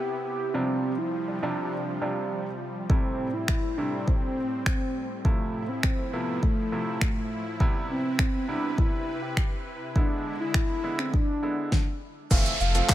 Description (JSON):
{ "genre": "dance-pop", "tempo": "102 BPM", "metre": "4/4", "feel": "straight", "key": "A minor", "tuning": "A4 = 440 Hz", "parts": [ { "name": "mellow horn-like synth lead", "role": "melody", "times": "0.0-12.9 s", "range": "A3 to F5", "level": "-31 LUFS", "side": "equal", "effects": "chorus, ping-pong delay" }, { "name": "supersaw pad", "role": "sustained chords", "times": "0.0-12.9 s", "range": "A2 to B4", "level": "-36 LUFS", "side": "equal", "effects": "sidechain pumping" }, { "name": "clear grand piano", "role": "accompaniment", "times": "0.5-12.9 s", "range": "C3 to F4", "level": "-33 LUFS", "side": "right 2 dB", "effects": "sidechain pumping" }, { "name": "deep house drum kit", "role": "drums", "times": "2.9-12.9 s", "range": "crash cymbal, finger snaps, handclaps, hi-hat, kick drum, shaker, snare drum", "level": "-24 LUFS", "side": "equal", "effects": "none" }, { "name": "saturated sub bass", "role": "bass", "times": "12.3-12.8 s", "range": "F1", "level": "-26 LUFS", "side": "equal", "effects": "sidechain pumping" }, { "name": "downlifter", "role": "sound effects", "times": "12.3-12.9 s", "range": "none", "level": "-28 LUFS", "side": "right 4 dB", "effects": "none" } ], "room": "little or no reverb", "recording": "none", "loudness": "-25 LUFS", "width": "side -13 dB against mid", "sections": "0.0-12.3 A section", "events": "stop 11.7-12.3", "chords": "0.0 Cmaj7; 0.5 G7sus4; 2.9 Am7; 5.2 Fmaj7/A; 7.6 Cmaj7; 10.0 E7; 12.3 Fmaj7", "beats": "| 0.54 1.13 1.72 2.31 | 2.90 3.48 4.07 4.66 | 5.25 5.84 6.43 7.01 | 7.60 8.19 8.78 9.37 | 9.96 10.54 11.13 11.72 | 12.31 12.90" }